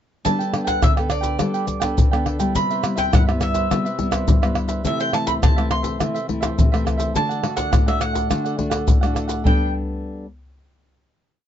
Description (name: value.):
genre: samba and choro.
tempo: 104 BPM.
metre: 4/4.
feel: straight.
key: G major.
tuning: A4 = 439 Hz.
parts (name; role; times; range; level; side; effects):
bowl-back mandolin; melody; 0.2-9.7 s; D5 to C6; -25 LUFS; right 2 dB; none.
cavaquinho; accompaniment; 0.2-9.7 s; D4 to G5; -29 LUFS; right 7 dB; none.
nylon-string guitar; accompaniment; 0.2-10.2 s; G2 to A4; -24 LUFS; left 2 dB; none.
maracas, surdo, pandeiro and tamborim; percussion; 0.3-9.6 s; none; -19 LUFS; left 1 dB; none.
room: light reverb.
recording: dark, warm production, nothing above 7.8 kHz.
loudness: -18 LUFS.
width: side -10 dB against mid.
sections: 0.3-9.5 groove; 9.5-11.5 final chord.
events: none.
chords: 0.3 Gadd9; 2.6 Cmaj7; 4.9 Am/C; 7.2 D; 9.5 Gadd9.